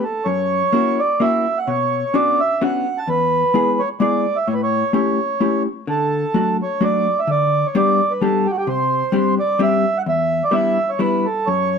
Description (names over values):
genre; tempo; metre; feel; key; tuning
musette waltz; 128 BPM; 3/4; rubato; unclear; A4 = 441 Hz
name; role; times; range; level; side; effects
mellow accordion; melody; 0.0-11.8 s; F#4 to A5; -18 LUFS; right 2 dB; none
vintage hollow-body jazz guitar; accompaniment; 0.0-11.8 s; E2 to G#4; -20 LUFS; left 4 dB; none
room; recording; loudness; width
moderate recital hall reverb, RT60 1.4 s; close, detailed microphones; -16 LUFS; side -6 dB against mid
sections
0.0-11.8 A section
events
none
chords
0.3 F#7; 1.7 Bmadd9; 3.1 E; 4.5 A7; 5.9 D; 7.3 G/D; 8.7 Csus2; 10.1 Em7